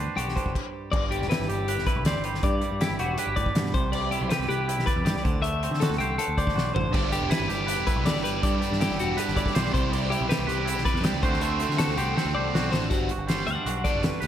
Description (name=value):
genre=math rock and midwest emo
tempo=160 BPM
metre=4/4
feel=straight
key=G major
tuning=A4 = 440 Hz
part: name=twangy electric guitar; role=accompaniment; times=0.0-14.3 s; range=G2 to D5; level=-30 LUFS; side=right 5 dB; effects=slapback echo
part: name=growling picked electric bass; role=bass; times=0.0-14.3 s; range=E1 to D3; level=-30 LUFS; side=equal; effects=overdrive
part: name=twelve-string electric guitar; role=arpeggios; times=0.2-14.3 s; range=F#4 to F#5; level=-30 LUFS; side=left 5 dB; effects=analog delay, slapback echo
part: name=loose indie drum kit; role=drums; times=0.2-14.3 s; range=crash cymbal, hi-hat, kick drum, snare drum, toms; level=-28 LUFS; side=equal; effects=none
part: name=biting overdriven guitar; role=riff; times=6.9-14.3 s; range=G2 to G4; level=-32 LUFS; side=right 1 dB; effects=none
room=moderate lush hall reverb, RT60 1.7 s, small room ambience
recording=big arena sound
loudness=-23 LUFS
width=side -10 dB against mid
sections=0.9-12.9 A section; 12.9-14.3 B section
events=stop 0.6-0.9; drum fill 6.6-6.9, 12.2-12.9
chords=0.0 Gmaj7; 0.9 G6; 3.7 Cmaj9; 5.3 D9; 6.9 G6; 9.7 Cmaj9; 11.2 D9; 12.9 Gmaj7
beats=0.17 0.55 | 0.93 1.30 1.68 2.06 | 2.43 2.81 3.19 3.56 | 3.94 4.31 4.69 5.06 | 5.44 5.81 6.19 6.56 | 6.94 7.31 7.69 8.06 | 8.43 8.81 9.18 9.55 | 9.92 10.30 10.67 11.04 | 11.41 11.79 12.16 12.54 | 12.91 13.28 13.66 14.03